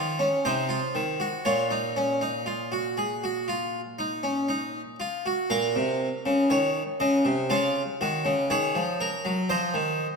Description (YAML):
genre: classical, baroque-style 3-part fugue for harpsichord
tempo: 60 BPM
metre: 4/4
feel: straight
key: Bb minor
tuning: A4 = 440 Hz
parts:
  - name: harpsichord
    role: solo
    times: 0.0-10.2 s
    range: Bb2 to F5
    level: -24 LUFS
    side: equal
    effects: none
room: wet concert hall reverb, RT60 1.9 s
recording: none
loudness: -24 LUFS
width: side -4 dB against mid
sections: 0.0-5.5 A section; 5.5-10.2 B section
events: none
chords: 0.0 F5; 1.5 Bbm; 7.5 Bbm/Db; 9.5 F7(no3)